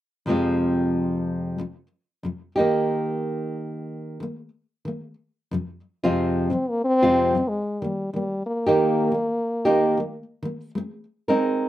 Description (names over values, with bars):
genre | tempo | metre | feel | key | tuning
pop | 92 BPM | 4/4 | swing 60% on 16ths | F minor | A4 = 439 Hz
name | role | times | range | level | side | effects
nylon-string guitar | accompaniment | 0.3-11.7 s | F2 to Bb4 | -22 LUFS | right 1 dB | none
warm French horn | melody | 6.5-10.4 s | G3 to C4 | -23 LUFS | left 1 dB | none
room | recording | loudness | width
little or no reverb | recorded outdoors, with no room sound | -21 LUFS | side -13 dB against mid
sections
0.3-5.5 A section; 5.5-11.7 B section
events
none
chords
0.3 Fm; 2.6 Eb; 5.5 Fm; 7.8 Eb; 10.8 Abadd9